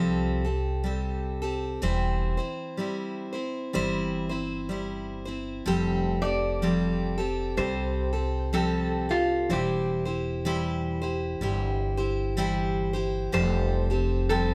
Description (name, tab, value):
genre	acoustic folk duo or small band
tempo	62 BPM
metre	4/4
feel	swing 59% on 8ths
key	F major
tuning	A4 = 439 Hz
part	picked steel-string acoustic guitar	accompaniment	0.0-14.5 s	E3 to C5	-30 LUFS	equal	none
part	upright bass	bass	0.0-14.5 s	E1 to C2	-33 LUFS	equal	none
part	lap resonator guitar	second line	6.2-14.5 s	F4 to D5	-32 LUFS	equal	none
room	light reverb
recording	none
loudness	-28 LUFS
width	mono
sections	0.0-5.7 A section; 5.7-14.5 B section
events	resonator guitar played with a steel bar solo 5.7-14.5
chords	0.0 Fadd9; 1.8 C/E; 5.7 Fadd9; 9.5 C/E; 13.3 Fadd9